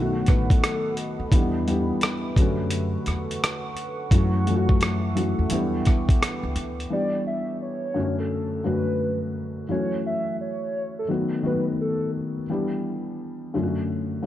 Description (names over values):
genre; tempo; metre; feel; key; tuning
lo-fi hip hop; 86 BPM; 4/4; swing 66% on 16ths; E dorian; A4 = 442 Hz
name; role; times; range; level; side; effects
felt-muted upright piano; accompaniment; 0.0-14.3 s; F#2 to G4; -26 LUFS; left 2 dB; cassette tape, low-pass filter
deep dark ambient pad; sustained chords; 0.0-6.9 s; A4 to D6; -34 LUFS; right 3 dB; chorus, built-in reverb, low-pass filter
upright bass; bass; 0.0-6.8 s; A1 to F#2; -27 LUFS; equal; none
warbly nostalgic lead; melody; 0.3-0.9, 6.9-12.1 s; A4 to E5; -30 LUFS; equal; chorus, low-pass filter
dusty soul sampler-style drum kit; drums; 0.3-6.9 s; hi-hat, kick drum, rim click; -22 LUFS; equal; none
room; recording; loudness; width
light reverb; cassette tape; -22 LUFS; side -12 dB against mid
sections
0.0-6.9 A section; 6.9-14.3 B section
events
none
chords
0.0 B7; 1.3 Em7; 2.4 Dmaj7; 4.1 F#m7; 5.5 Em7; 7.9 Dmaj7/F#; 9.7 F#m7; 11.1 B7; 12.5 Em7; 13.5 Dmaj7/F#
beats
0.62 | 1.32 2.02 2.71 3.41 | 4.11 4.81 5.50 6.20 | 6.90 7.60 8.29 8.99 | 9.69 10.39 11.09 11.78 | 12.48 13.18 13.88